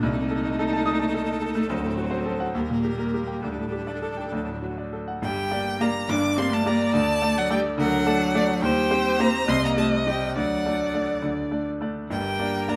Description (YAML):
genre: quick classical-period movement for piano quartet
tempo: 66-73 BPM (dotted quarters)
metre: 6/8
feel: rubato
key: G minor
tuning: A4 = 440 Hz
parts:
  - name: clear violin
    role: melody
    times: 0.0-12.8 s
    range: A4 to D6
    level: -32 LUFS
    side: equal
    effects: none
  - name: clear cello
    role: second line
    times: 0.0-12.8 s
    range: F#3 to D4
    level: -31 LUFS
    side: equal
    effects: none
  - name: clear grand piano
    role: accompaniment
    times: 0.0-12.8 s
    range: G1 to Eb6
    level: -28 LUFS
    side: equal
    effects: none
  - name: clear viola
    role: accompaniment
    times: 0.0-12.8 s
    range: Bb3 to Eb5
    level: -31 LUFS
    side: equal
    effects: none
room: moderate stone room reverb, RT60 1.0 s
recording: none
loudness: -25 LUFS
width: mono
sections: 0.0-5.2 A section; 5.2-12.8 B section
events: none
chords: 0.0 Adim/C; 1.7 D7; 2.5 Eb; 3.4 Dsus4; 4.3 D; 5.2 Gm; 6.9 D; 8.6 Cm/Eb; 9.5 Cm; 10.3 D; 12.1 Gm